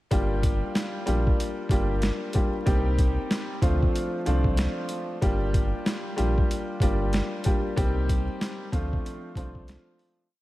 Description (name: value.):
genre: hip hop, boom-bap hip-hop.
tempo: 94 BPM.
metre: 4/4.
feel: swing 59% on 16ths.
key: G minor.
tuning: A4 = 440 Hz.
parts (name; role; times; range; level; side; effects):
warm upright piano; accompaniment; 0.1-10.3 s; F3 to G4; -29 LUFS; left 1 dB; high-pass filter, low-pass filter.
sub bass with octave; bass; 0.1-9.8 s; G1 to D2; -26 LUFS; equal; none.
boom bap sampler-style drum kit; drums; 0.1-10.2 s; hi-hat, kick drum, snare drum; -26 LUFS; equal; none.
room: light reverb.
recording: vinyl crackle.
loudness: -23 LUFS.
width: side -17 dB against mid.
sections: 0.1-10.3 verse.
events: fade-out 7.8-10.3.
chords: 0.1 Gm7; 2.7 Cm7; 3.6 Dm7; 5.2 Gm7; 7.8 Cm7; 8.7 Dm7.